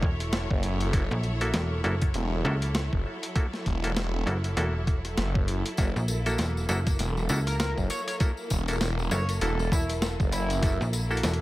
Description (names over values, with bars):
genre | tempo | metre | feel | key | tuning
glitch hop | 99 BPM | 4/4 | swing 58% on 16ths | F# minor pentatonic | A4 = 440 Hz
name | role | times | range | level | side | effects
bright studio string section | sustained chords | 0.0-11.4 s | F#3 to C#5 | -36 LUFS | equal | vintage 12-bit sampler grit, sidechain pumping
slap-like FM bass | bass | 0.0-11.4 s | E1 to C#2 | -28 LUFS | equal | none
electronic kick drum | drums | 0.0-10.8 s | none | -26 LUFS | equal | none
boom bap sampler-style drum kit | drums | 0.2-11.4 s | hi-hat, rim click, snare drum | -33 LUFS | equal | dub echo
phased detuned saw bass | bass | 0.5-10.8 s | E1 to F#1 | -28 LUFS | equal | phaser, tube saturation
clav | stabs | 0.9-11.4 s | A#3 to A4 | -34 LUFS | equal | sidechain pumping, dub echo
tambourine | percussion | 5.8-11.4 s | none | -39 LUFS | left 3 dB | none
sync lead | melody | 7.5-10.8 s | E4 to C#5 | -35 LUFS | equal | chorus, dub echo
room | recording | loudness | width
light reverb, digital ambience | echo-heavy mix, vinyl crackle | -25 LUFS | side -17 dB against mid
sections
0.0-11.4 A section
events
none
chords
0.0 F#7#9